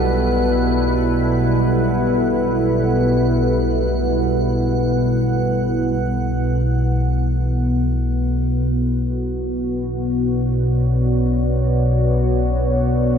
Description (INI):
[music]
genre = dark ambient drone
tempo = free time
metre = none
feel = none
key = B minor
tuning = A4 = 439 Hz
[part]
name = deep dark ambient pad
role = sustained chords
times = 0.0-13.2 s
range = B2 to D5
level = -20 LUFS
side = equal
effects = chorus, built-in reverb
[part]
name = analog drone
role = drone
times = 0.0-13.2 s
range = B1 to B2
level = -19 LUFS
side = equal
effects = chorus
[part]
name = icy glass pad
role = texture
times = 0.0-6.0 s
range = F#5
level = -30 LUFS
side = right 6 dB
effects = chorus, built-in reverb
[sound]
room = moderate plate reverb, RT60 2.9 s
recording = cassette tape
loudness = -16 LUFS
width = side -7 dB against mid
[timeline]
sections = 0.0-6.0 A section; 6.0-13.2 A section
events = none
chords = 0.0 G/B; 6.0 Bmadd9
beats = free time